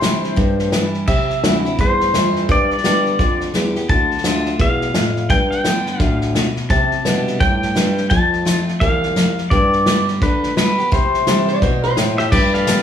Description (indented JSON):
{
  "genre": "honky-tonk and classic country",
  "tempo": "171 BPM",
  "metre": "4/4",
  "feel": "swing 60% on 8ths",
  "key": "C major",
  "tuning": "A4 = 440 Hz",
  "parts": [
    { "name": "pedal steel guitar", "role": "melody", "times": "0.0-12.8 s", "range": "G4 to A5", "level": "-20 LUFS", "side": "left 1 dB", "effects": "none" },
    { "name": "picked steel-string acoustic guitar", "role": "accompaniment", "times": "0.0-12.8 s", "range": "E2 to G4", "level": "-21 LUFS", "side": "left 1 dB", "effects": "none" },
    { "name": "dark bassoon", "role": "bass", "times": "0.0-12.8 s", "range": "C2 to D3", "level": "-22 LUFS", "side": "equal", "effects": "none" },
    { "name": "unplugged drum kit", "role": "drums", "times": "0.0-12.8 s", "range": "crash cymbal, hi-hat, kick drum, snare drum", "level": "-19 LUFS", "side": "equal", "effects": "none" },
    { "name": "lap resonator guitar", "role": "second line", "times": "11.5-12.2 s", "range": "C5 to D5", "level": "-22 LUFS", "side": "right 2 dB", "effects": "none" },
    { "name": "pedal steel guitar", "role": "sustained chords", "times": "12.3-12.8 s", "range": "G4 to D5", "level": "-24 LUFS", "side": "right 1 dB", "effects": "none" }
  ],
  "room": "moderate studio reverb, RT60 0.8 s",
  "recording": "studio reverb",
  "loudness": "-14 LUFS",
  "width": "side -9 dB against mid",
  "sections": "0.0-1.1 A section; 1.1-12.3 A section",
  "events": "none",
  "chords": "0.0 Cadd9; 1.1 C; 2.5 G; 3.9 Dm; 5.3 G; 6.7 Csus2; 8.1 F; 9.5 G; 10.9 Cadd9; 12.3 G"
}